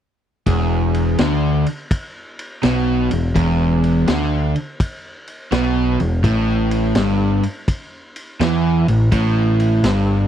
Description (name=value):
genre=blues rock power trio and southern rock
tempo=83 BPM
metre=4/4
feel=swing 66% on 8ths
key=unclear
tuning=A4 = 444 Hz
part: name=overdriven semi-hollow guitar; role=riff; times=0.5-10.3 s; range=E2 to E3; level=-17 LUFS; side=right 1 dB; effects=none
part: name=growling picked electric bass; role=bass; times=0.5-10.3 s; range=E1 to E2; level=-20 LUFS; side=equal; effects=overdrive
part: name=vintage drum kit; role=drums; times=0.5-10.1 s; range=kick drum, ride cymbal, snare drum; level=-24 LUFS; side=equal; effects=none
room=small room ambience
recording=dry, close 1970s-style studio recording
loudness=-15 LUFS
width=side -10 dB against mid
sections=0.5-10.3 A section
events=none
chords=0.5 E5; 6.2 A5